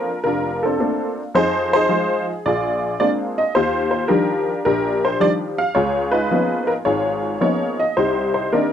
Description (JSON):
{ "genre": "solo jazz", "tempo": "109 BPM", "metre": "4/4", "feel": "swing 69% on 8ths", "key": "Bb major", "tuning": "A4 = 444 Hz", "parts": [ { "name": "honky-tonk upright piano", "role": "solo", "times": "0.0-8.7 s", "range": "F1 to F5", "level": "-17 LUFS", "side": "left 1 dB", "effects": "none" } ], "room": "light reverb", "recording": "none", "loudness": "-17 LUFS", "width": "side -9 dB against mid", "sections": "0.0-8.7 A section", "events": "none", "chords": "0.0 Bbmaj9; 1.3 Fm7; 2.4 Bb9; 3.6 Ebmaj9; 5.8 Db13; 8.0 Cm9" }